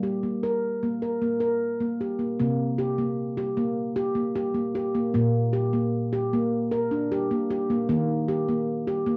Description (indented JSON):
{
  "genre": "world meditative, meditative tuned percussion",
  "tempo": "153 BPM (eighths)",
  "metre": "7/8",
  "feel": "straight",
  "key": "unclear",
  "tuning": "A4 = 441 Hz",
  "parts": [
    { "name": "handpan", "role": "solo", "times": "0.0-9.2 s", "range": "Bb2 to Bb4", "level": "-26 LUFS", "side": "equal", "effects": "cassette tape" }
  ],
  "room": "wet small room reverb, RT60 0.5 s",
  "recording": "home recording on cassette",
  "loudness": "-26 LUFS",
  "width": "mono",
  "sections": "0.0-2.4 A section; 2.4-9.2 B section",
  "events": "none",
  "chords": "0.0 Gm; 2.4 C5; 5.2 N.C.; 7.9 Eb"
}